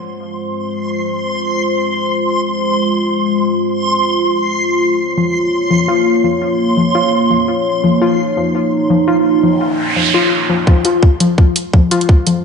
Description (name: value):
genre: half-time drum and bass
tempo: 169 BPM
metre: 4/4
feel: swing 56% on 16ths, half-time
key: F minor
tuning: A4 = 439 Hz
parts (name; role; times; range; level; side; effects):
- dark analog pad; sustained chords; 0.0-12.4 s; Ab3 to Db5; -16 LUFS; right 1 dB; chorus, phaser, vintage 12-bit sampler grit, sidechain pumping
- backwards swelling texture; texture; 0.3-10.7 s; C6; -20 LUFS; right 1 dB; built-in reverb, ensemble chorus
- warbly dusty pluck; arpeggios; 5.2-12.4 s; F3 to F4; -15 LUFS; left 4 dB; chorus, tape echo
- noise sweep; sound effects; 9.5-10.7 s; none; -18 LUFS; right 4 dB; none
- electronic kick drum; drums; 10.7-12.2 s; none; -9 LUFS; equal; overdrive, studio reverb
- electronic hi-hat; drums; 10.8-12.3 s; none; -18 LUFS; right 1 dB; overdrive, low-pass filter on snare, studio reverb, low-pass filter on hats
room: wet lush hall reverb, RT60 1.9 s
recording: dreamy mix soaked in reverb, nothing above 10.5 kHz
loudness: -12 LUFS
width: side -6 dB against mid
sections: 0.0-10.7 A section; 10.7-12.4 B section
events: noise sweep 9.5-10.7; build-up 10.7-12.4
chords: 0.0 Fm; 5.0 Bbm; 10.7 Fm